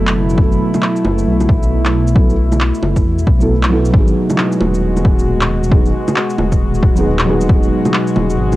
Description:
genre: future garage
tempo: 135 BPM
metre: 4/4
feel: swing 62% on 16ths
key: G# phrygian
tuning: A4 = 441 Hz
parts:
  - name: felt-muted upright piano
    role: accompaniment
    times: 0.0-8.6 s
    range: F#3 to A4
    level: -19 LUFS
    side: right 1 dB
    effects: sidechain pumping, tape echo
  - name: warbly tape-like pad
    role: sustained chords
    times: 0.0-8.6 s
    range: B2 to F#4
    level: -19 LUFS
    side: equal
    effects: chorus, built-in reverb, vintage 12-bit sampler grit, sidechain pumping
  - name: dark detuned saw bass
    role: bass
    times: 0.0-8.6 s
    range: D#1 to E2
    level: -17 LUFS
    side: equal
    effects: sidechain pumping
  - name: electronic handclaps, shaker and bongos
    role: drums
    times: 0.1-8.6 s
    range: none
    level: -18 LUFS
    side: equal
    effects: overdrive
  - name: electronic kick drum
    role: drums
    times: 0.4-7.6 s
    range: none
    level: -13 LUFS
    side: equal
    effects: overdrive
room: little or no reverb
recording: dry, gritty hardware recording, cassette tape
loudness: -11 LUFS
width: side -17 dB against mid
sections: 0.0-3.9 A section; 3.9-8.6 B section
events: band accent 3.6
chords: 0.0 B7sus4; 3.9 G#m7

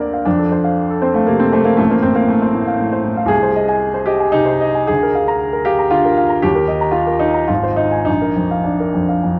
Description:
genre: classical, romantic character piece for solo piano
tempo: 100-121 BPM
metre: 3/4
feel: rubato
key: unclear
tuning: A4 = 441 Hz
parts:
  - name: clear baby grand piano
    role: solo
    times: 0.0-9.4 s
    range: Ab1 to Bb5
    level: -16 LUFS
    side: equal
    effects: none
room: wet scoring stage reverb, RT60 1.7 s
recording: none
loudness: -16 LUFS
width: mono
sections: 0.0-9.4 A section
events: none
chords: 0.3 F; 1.8 F/A; 3.3 Ab/C; 4.9 Bb7/D; 6.4 Eb; 7.5 Ab; 8.1 Bb

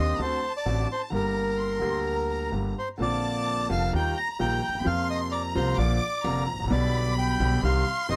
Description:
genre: tango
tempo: 130 BPM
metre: 4/4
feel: rubato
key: Bb major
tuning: A4 = 440 Hz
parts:
  - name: bandoneon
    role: melody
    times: 0.0-8.2 s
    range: Bb4 to Bb5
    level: -31 LUFS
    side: equal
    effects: none
  - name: rich chamber violin section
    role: second line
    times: 0.0-8.2 s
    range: A5 to D6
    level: -37 LUFS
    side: equal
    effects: none
  - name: clear concert grand piano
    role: accompaniment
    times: 0.0-8.2 s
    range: F1 to G4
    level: -32 LUFS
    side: equal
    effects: none
  - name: upright bass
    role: bass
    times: 0.0-8.2 s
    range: F1 to F2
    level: -31 LUFS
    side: equal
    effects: none
room: little or no reverb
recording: close, detailed microphones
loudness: -27 LUFS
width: mono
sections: 0.0-3.0 A section; 3.0-8.2 B section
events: none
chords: 0.2 D7; 1.1 Gm; 3.0 Bbadd9; 3.9 Ebadd9; 4.9 Fsus4; 5.8 Bb; 6.7 G/B; 7.6 Cm

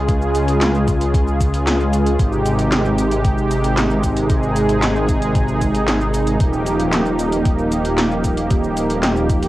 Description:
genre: synthwave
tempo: 114 BPM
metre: 4/4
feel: straight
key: unclear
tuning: A4 = 440 Hz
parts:
  - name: warm analog pad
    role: sustained chords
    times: 0.0-9.5 s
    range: C3 to Ab4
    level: -18 LUFS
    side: right 1 dB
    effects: chorus, sidechain pumping, plate reverb
  - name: wide detuned saw bass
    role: bass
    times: 0.0-9.5 s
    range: Eb1 to Db2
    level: -20 LUFS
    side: equal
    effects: chorus, tube saturation, sidechain pumping
  - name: 80s electronic pad drums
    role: drums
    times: 0.1-9.5 s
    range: cabasa, handclaps, hi-hat, snare drum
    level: -22 LUFS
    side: equal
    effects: cassette tape
  - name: electronic kick drum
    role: drums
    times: 0.1-9.4 s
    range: none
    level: -18 LUFS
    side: equal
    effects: cassette tape
room: light reverb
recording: home recording on cassette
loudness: -15 LUFS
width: side -16 dB against mid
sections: 0.0-9.5 A section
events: none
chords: 0.0 Db; 2.2 Abmaj7; 6.4 Ebadd9

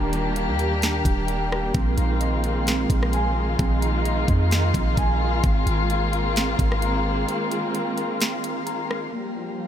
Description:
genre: hip hop, atmospheric cloud-rap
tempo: 130 BPM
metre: 4/4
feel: half-time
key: unclear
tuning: A4 = 440 Hz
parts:
  - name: dark chamber string section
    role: sustained chords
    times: 0.0-9.7 s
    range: Eb3 to G4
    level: -25 LUFS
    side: left 2 dB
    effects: sidechain pumping, low-pass filter
  - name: mellow electric guitar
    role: arpeggios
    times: 0.0-9.7 s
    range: Bb3 to Bb5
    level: -29 LUFS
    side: right 2 dB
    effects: harmonic tremolo, low-pass filter, tape echo
  - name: warm 808-style bass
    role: bass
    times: 0.0-7.3 s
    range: Eb1 to F2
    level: -24 LUFS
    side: equal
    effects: none
  - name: trap drum kit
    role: drums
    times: 0.1-9.0 s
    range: hi-hat, kick drum, rim click, snare drum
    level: -25 LUFS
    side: equal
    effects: none
room: light reverb, digital ambience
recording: none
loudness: -20 LUFS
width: side -10 dB against mid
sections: 0.0-9.1 A section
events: break 7.3-9.1, 9.1-9.7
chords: 0.0 Ebmaj9; 1.7 Bb9sus4; 5.4 Ab69; 9.1 Gm7

